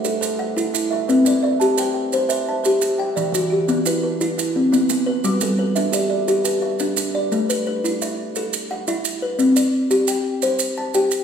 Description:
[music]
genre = southern african traditional, mbira-style interlocking cycle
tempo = 116 BPM (dotted quarters)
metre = 12/8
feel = straight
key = A dorian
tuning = A4 = 440 Hz
[part]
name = kalimba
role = arpeggios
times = 0.0-11.2 s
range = E3 to A5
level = -19 LUFS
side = left 2 dB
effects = none
[part]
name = kalimba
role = arpeggios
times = 0.0-7.7 s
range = E3 to A5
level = -23 LUFS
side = right 4 dB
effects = none
[part]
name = maracas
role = percussion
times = 0.0-11.2 s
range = none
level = -26 LUFS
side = right 6 dB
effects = none
[sound]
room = wet recital hall reverb, RT60 1.4 s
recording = heard from further back in the room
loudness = -17 LUFS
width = side -7 dB against mid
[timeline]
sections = 0.0-7.3 A section; 7.3-11.2 B section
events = none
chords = 0.0 Am; 1.1 C; 3.2 Em; 5.2 G; 7.3 A5; 9.4 C5

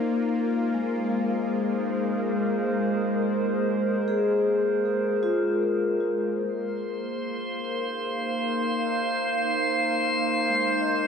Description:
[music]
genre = ambient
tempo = 78 BPM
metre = 4/4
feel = straight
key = unclear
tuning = A4 = 440 Hz
[part]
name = warbly tape-like pad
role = sustained chords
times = 0.0-11.1 s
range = Ab3 to F5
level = -26 LUFS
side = equal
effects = chorus, built-in reverb
[part]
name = vibraphone with medium mallets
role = arpeggios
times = 0.0-11.1 s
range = Ab3 to Eb5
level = -30 LUFS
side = left 1 dB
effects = ping-pong delay
[part]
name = bowed-like drone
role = drone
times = 0.0-6.5 s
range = Bb3 to F4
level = -32 LUFS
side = left 4 dB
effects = built-in reverb
[part]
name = drifting glass-harmonics texture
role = texture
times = 7.1-11.1 s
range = C5 to C6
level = -26 LUFS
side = right 1 dB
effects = chorus, built-in reverb
[sound]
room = wet lush hall reverb, RT60 2.6 s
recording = nothing above 10.3 kHz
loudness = -23 LUFS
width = side -6 dB against mid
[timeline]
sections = 0.0-6.5 A section; 6.5-11.1 B section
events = fade-in on vibraphone 0.0-6.5, 6.5-11.1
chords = 0.3 Abadd9

